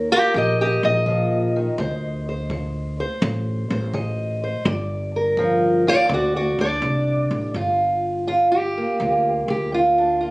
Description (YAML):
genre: acoustic country blues, solo or duo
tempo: 83 BPM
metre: 4/4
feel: swing 68% on 8ths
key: G minor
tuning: A4 = 441 Hz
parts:
  - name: fingerpicked steel-string acoustic guitar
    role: melody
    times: 0.0-10.3 s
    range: G2 to Eb5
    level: -19 LUFS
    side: equal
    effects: none
  - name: upright bass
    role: bass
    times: 0.0-10.3 s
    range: G1 to Eb2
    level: -25 LUFS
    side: equal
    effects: none
  - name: kick drum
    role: drums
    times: 0.3-7.1 s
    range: none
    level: -36 LUFS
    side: equal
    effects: none
room: light reverb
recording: recorded on a phone in the room, studio reverb, compression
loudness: -18 LUFS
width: side -22 dB against mid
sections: 0.0-7.6 A section; 7.6-10.3 B section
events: steel-string acoustic guitar solo 0.0-7.6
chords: 0.0 Eb; 1.8 D5; 4.7 Gm7; 6.1 D7; 7.6 Gm7